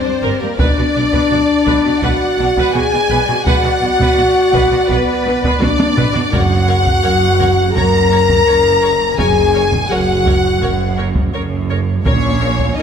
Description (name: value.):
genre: cinematic, epic orchestral film score.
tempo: 84 BPM.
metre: 4/4.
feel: straight.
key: unclear.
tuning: A4 = 441 Hz.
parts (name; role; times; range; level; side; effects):
rich symphonic violin section; melody; 0.0-12.8 s; Bb4 to A#5; -21 LUFS; left 2 dB; none.
clear symphonic violin section; second line; 0.0-12.8 s; Bb4 to A#5; -20 LUFS; left 1 dB; none.
bright symphonic viola section; accompaniment; 0.0-12.8 s; D4 to D5; -23 LUFS; right 1 dB; none.
dark French horn section; sustained chords; 0.0-12.8 s; Bb3 to A#4; -16 LUFS; left 3 dB; none.
rich symphonic cello section; bass; 0.1-12.8 s; F#2 to B2; -21 LUFS; right 4 dB; none.
rich symphonic double bass section; bass; 0.2-12.8 s; F#1 to B1; -21 LUFS; right 4 dB; none.
taiko ensemble; drums; 0.6-12.8 s; none; -20 LUFS; equal; none.
room: wet scoring stage reverb, RT60 1.8 s.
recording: none.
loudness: -11 LUFS.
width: side -7 dB against mid.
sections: 0.0-12.8 A section.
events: drum fill 5.6-6.3.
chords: 0.0 Gm; 0.6 Bm; 6.3 F#; 12.1 Bbm.